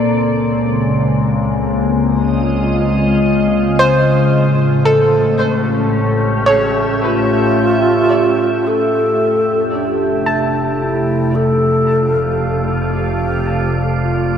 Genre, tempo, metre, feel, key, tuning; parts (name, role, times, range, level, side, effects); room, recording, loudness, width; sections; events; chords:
ambient; 56 BPM; 4/4; straight; F major; A4 = 440 Hz
glassy FM pad; sustained chords; 0.0-14.4 s; A2 to E5; -14 LUFS; left 1 dB; ensemble chorus, built-in reverb
clear chamber double bass section; bass; 0.0-14.4 s; F1 to Db2; -26 LUFS; right 1 dB
soft round pluck; arpeggios; 3.8-14.2 s; A4 to A5; -18 LUFS; equal; lush chorus, cassette tape, diffuse ambient delay
mellow hollow alto flute; melody; 7.0-14.4 s; D4 to A4; -17 LUFS; equal; diffuse ambient delay
wind-like tuned noise texture; texture; 10.0-14.4 s; D5 to D7; -37 LUFS; left 2 dB; built-in reverb
wet huge ambient reverb, RT60 9.3 s; -12 LUFS; side -8 dB against mid
0.0-8.6 A section; 8.6-14.4 B section
fade-out on double bass section 0.0-8.6
0.1 Dbmaj7; 4.3 A7; 8.6 F